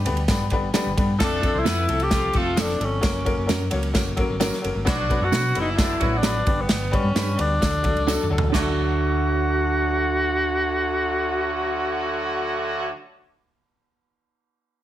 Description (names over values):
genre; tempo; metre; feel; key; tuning
uptempo 1960s-style soul; 131 BPM; 4/4; straight; D major; A4 = 444 Hz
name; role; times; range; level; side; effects
breathy tenor saxophone; melody; 0.0-12.9 s; B3 to G4; -24 LUFS; left 1 dB; none
clear upright piano; accompaniment; 0.0-12.9 s; F3 to C#5; -27 LUFS; left 3 dB; none
hollow-body short-scale fingered electric bass; bass; 0.0-12.9 s; F1 to B2; -26 LUFS; equal; none
natural country drum kit; drums; 0.1-8.7 s; crash cymbal, kick drum, ride cymbal, snare drum, toms; -24 LUFS; equal; none
tambourine; percussion; 0.3-8.8 s; none; -38 LUFS; right 6 dB; none
clean electric guitar; stabs; 0.7-13.0 s; C4 to B4; -30 LUFS; right 8 dB; slapback echo
clear horn section; second line; 1.2-12.9 s; D3 to C5; -29 LUFS; right 1 dB; none
room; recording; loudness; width
moderate studio reverb, RT60 0.7 s; heavily compressed radio sound, multiband compression; -20 LUFS; side -12 dB against mid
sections
0.0-8.5 A section; 8.5-12.2 B section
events
drum fill 8.1-8.5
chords
0.0 G; 1.2 F; 3.0 F#; 4.9 Bm; 6.5 G; 7.6 D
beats
0.29 0.74 | 1.20 1.66 2.12 2.58 | 3.04 3.49 3.95 4.41 | 4.87 5.33 5.79 6.25 | 6.70 7.16 7.62 8.08 | 8.54 9.00 9.46 9.92 | 10.38 10.84 11.29 11.75